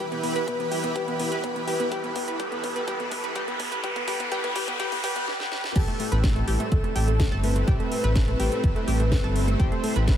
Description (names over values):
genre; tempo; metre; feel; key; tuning
progressive house; 125 BPM; 4/4; straight; unclear; A4 = 435 Hz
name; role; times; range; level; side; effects
wide unison lead; melody; 0.0-10.2 s; A4 to C5; -32 LUFS; equal; analog chorus, cassette tape, ping-pong delay
supersaw pad; sustained chords; 0.0-10.2 s; E3 to B5; -31 LUFS; right 1 dB; wide subtle chorus, sidechain pumping
analog pluck; arpeggios; 0.0-10.1 s; A3 to B4; -30 LUFS; left 1 dB; chorus, vintage 12-bit sampler grit, sidechain pumping, analog delay
electronic kick drum; drums; 0.0-10.2 s; none; -24 LUFS; equal; high-pass filter on kick, high-pass filter on room
riser; sound effects; 0.6-5.3 s; none; -34 LUFS; equal; none
house drum kit; drums; 0.1-10.2 s; crash cymbal, hi-hat, snare drum; -35 LUFS; right 1 dB; sidechain pumping on hats, sidechain pumping on cymbals
round analog bass; bass; 5.8-10.2 s; G1 to A1; -24 LUFS; equal; sidechain pumping
twinkling granular texture; texture; 6.1-10.2 s; E5 to E6; -42 LUFS; equal; built-in reverb, lush chorus, sidechain pumping
room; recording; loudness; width
moderate huge ambient reverb, RT60 7.1 s; dreamy mix soaked in reverb, high-pass filter; -23 LUFS; side -10 dB against mid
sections
0.0-5.8 A section; 5.8-10.2 B section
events
build-up 0.0-5.8; drum fill 0.0-5.3, 5.3-5.8; filter sweep on analog synth lead 0.0-5.8; filter sweep 0.0-5.8; riser 0.6-5.3; drop 5.8-10.2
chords
0.0 Em; 5.8 Am7